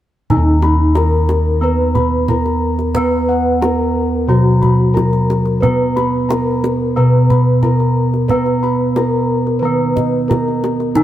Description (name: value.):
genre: Javanese gamelan.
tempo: 90 BPM.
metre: 4/4.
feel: straight.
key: unclear.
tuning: A4 = 440 Hz.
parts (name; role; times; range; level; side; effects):
gamelan-type bronze metallophone; melody; 0.3-11.0 s; Eb4 to Cb5; -19 LUFS; left 1 dB; none.
gamelan-type bronze metallophone; accompaniment; 0.3-11.0 s; Eb3 to Cb4; -20 LUFS; right 3 dB; none.
gamelan-type bossed gongs; arpeggios; 0.3-11.0 s; Eb5 to Cb6; -23 LUFS; left 4 dB; none.
gamelan-type bossed gongs; bass; 0.3-11.0 s; Eb2 to Cb5; -16 LUFS; equal; none.
kendang; percussion; 0.3-11.0 s; none; -22 LUFS; right 2 dB; none.
room: moderate plate reverb, RT60 3.7 s.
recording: heard from further back in the room.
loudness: -12 LUFS.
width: side -12 dB against mid.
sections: 0.3-11.0 A section.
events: none.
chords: none.